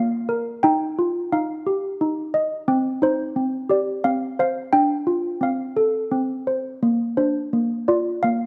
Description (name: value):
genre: children's music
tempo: 87 BPM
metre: 3/4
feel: rubato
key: Bb major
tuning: A4 = 440 Hz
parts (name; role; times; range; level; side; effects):
- malleted handbells; solo; 0.0-8.5 s; Bb3 to G5; -22 LUFS; equal; none
room: light reverb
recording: close, detailed microphones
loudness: -22 LUFS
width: mono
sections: 0.0-8.5 A section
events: none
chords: 0.0 Bb; 0.6 Ebadd9; 2.7 Cm; 4.7 Dmadd11; 5.4 F; 6.8 Bb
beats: | 0.63 1.32 2.01 | 2.69 3.37 4.05 | 4.73 5.42 6.12 | 6.83 7.53 8.23